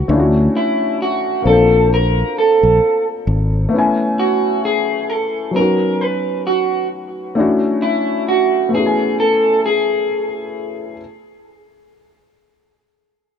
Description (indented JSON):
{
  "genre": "hip hop",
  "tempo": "66 BPM",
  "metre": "4/4",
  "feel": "swing 60% on 16ths",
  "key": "A major",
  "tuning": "A4 = 444 Hz",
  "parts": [
    { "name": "dark upright piano", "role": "accompaniment", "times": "0.0-11.0 s", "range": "F#3 to G#5", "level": "-19 LUFS", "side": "left 2 dB", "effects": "cassette tape, low-pass filter" },
    { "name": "fingered electric bass", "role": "bass", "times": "0.1-3.7 s", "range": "G#1 to D2", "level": "-15 LUFS", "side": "left 1 dB", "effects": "none" },
    { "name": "electric guitar through a small old amp", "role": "melody", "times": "0.6-10.3 s", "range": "E4 to B4", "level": "-16 LUFS", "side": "right 1 dB", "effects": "lush chorus, low-pass filter, analog delay" }
  ],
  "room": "light reverb, small room ambience",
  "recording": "rough home demo mix",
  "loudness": "-14 LUFS",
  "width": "side -7 dB against mid",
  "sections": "0.0-11.0 A section",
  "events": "none",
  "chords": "0.1 Dmaj9; 1.4 Bbadd9; 3.7 Amaj9; 5.5 Badd9; 7.4 Dmaj9; 8.7 Amaj9"
}